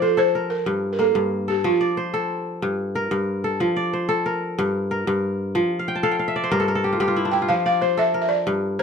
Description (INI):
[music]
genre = west african traditional, West African string and xylophone music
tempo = 123 BPM (dotted quarters)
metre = 12/8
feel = straight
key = F major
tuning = A4 = 440 Hz
[part]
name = balafon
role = melody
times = 0.0-2.0, 7.3-8.8 s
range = F4 to G5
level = -21 LUFS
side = right 1 dB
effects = none
[part]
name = kora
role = arpeggios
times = 0.0-8.8 s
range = G2 to A5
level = -22 LUFS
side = left 1 dB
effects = none
[sound]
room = moderate studio reverb, RT60 0.6 s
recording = none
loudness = -20 LUFS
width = side -6 dB against mid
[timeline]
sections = 0.0-8.8 A section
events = kora fill 5.8-7.5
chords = 0.0 F; 0.7 Gm; 1.6 F; 2.6 Gm; 3.6 F; 4.6 Gm; 5.5 F; 6.5 N.C.; 7.5 F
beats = 0.17 0.67 1.16 | 1.65 2.13 2.62 3.11 | 3.60 4.08 4.57 5.06 | 5.54 6.03 6.52 7.00 | 7.49 7.97 8.46